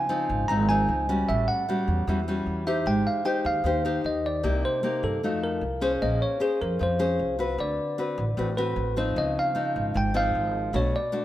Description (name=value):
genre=bossa nova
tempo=152 BPM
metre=4/4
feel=straight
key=unclear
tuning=A4 = 439 Hz
part: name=bell-like tine electric piano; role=melody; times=0.0-11.2 s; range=Ab4 to Bb5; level=-28 LUFS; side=right 1 dB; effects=none
part: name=nylon-string guitar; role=accompaniment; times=0.0-11.2 s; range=Ab2 to C5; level=-28 LUFS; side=left 2 dB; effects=none
part: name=upright bass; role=bass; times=0.3-10.9 s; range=Ab1 to G2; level=-29 LUFS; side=right 1 dB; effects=none
room=moderate echo chamber reverb, RT60 2.0 s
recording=minimal, uncompressed stereo recording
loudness=-23 LUFS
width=side -13 dB against mid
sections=0.0-11.2 A section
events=none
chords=0.0 Dbmaj9; 1.3 A6; 2.9 Abmaj7; 4.4 Cm7; 5.2 F7b9; 6.0 Bbm9; 7.6 D6; 9.2 Dbmaj9; 10.7 Bm7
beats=0.10 0.49 0.89 | 1.28 1.68 2.07 2.46 | 2.86 3.25 3.65 4.04 | 4.43 4.83 5.22 5.62 | 6.01 6.41 6.80 7.19 | 7.59 7.98 8.38 8.77 | 9.16 9.56 9.95 10.35 | 10.74 11.13